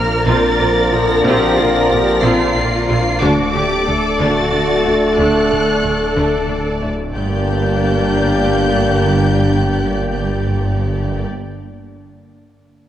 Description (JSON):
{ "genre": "cinematic, hybrid orchestral and electronic film score", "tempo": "61 BPM (dotted quarters)", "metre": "6/8", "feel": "straight", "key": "G minor", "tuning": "A4 = 437 Hz", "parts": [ { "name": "warm studio violin section", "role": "melody", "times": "0.0-11.3 s", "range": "D6 to C7", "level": "-23 LUFS", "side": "left 2 dB", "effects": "none" }, { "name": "rich symphonic violin section", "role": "second line", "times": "0.0-11.2 s", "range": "G4 to D5", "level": "-24 LUFS", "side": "left 1 dB", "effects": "none" }, { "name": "airy breathy pad", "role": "sustained chords", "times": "0.0-11.3 s", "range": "D3 to D5", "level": "-25 LUFS", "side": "equal", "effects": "chorus" }, { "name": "clear trombone section", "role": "sustained chords", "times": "0.0-11.3 s", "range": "D3 to Bb3", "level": "-22 LUFS", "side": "right 1 dB", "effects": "none" }, { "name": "mellow French horn section", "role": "sustained chords", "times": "0.0-11.3 s", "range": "C4 to Bb4", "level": "-21 LUFS", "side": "left 3 dB", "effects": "none" }, { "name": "tight sequenced synth", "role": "arpeggios", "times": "0.0-7.0 s", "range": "D3 to Bb4", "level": "-27 LUFS", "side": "equal", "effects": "none" }, { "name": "warm symphonic cello section", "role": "bass", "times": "0.0-11.3 s", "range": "G2 to Bb4", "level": "-21 LUFS", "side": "right 1 dB", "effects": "none" }, { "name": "wide detuned saw bass", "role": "bass", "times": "0.0-11.3 s", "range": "D1 to Bb1", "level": "-25 LUFS", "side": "equal", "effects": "chorus" }, { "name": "warm studio viola section", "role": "accompaniment", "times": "0.3-11.3 s", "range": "A3 to F4", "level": "-23 LUFS", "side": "equal", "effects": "none" }, { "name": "warm symphonic double bass section", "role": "bass", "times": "0.3-11.2 s", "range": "G1 to D2", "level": "-22 LUFS", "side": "right 2 dB", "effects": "none" } ], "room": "moderate scoring stage reverb, RT60 1.8 s", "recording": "worn, warbling old tape, cassette tape, warbly pitch drift", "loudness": "-13 LUFS", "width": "side -11 dB against mid", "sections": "0.0-7.1 A section; 7.1-11.1 B section", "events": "none", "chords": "0.0 Bbadd9; 3.2 D; 7.1 Gm" }